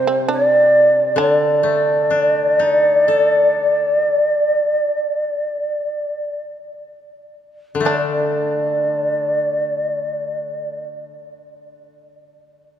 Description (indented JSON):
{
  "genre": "japanese traditional, Japanese chamber music",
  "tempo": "43-70 BPM",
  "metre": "4/4",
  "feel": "rubato",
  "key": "unclear",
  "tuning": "A4 = 444 Hz",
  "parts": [
    { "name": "mellow hollow shakuhachi", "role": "melody", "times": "0.0-10.9 s", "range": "C5 to D5", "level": "-16 LUFS", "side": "equal", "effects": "none" },
    { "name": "shamisen", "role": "second line", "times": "0.0-10.8 s", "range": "C4 to D4", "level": "-28 LUFS", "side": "right 5 dB", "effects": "none" },
    { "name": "koto", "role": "accompaniment", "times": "0.0-11.1 s", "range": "C3 to A4", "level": "-23 LUFS", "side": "left 3 dB", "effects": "none" }
  ],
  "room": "moderate cathedral reverb, RT60 5.2 s",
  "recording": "none",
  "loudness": "-15 LUFS",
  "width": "side -10 dB against mid",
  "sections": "0.0-7.9 A section; 7.9-12.8 B section",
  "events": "slowing down 0.0-7.9",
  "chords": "none"
}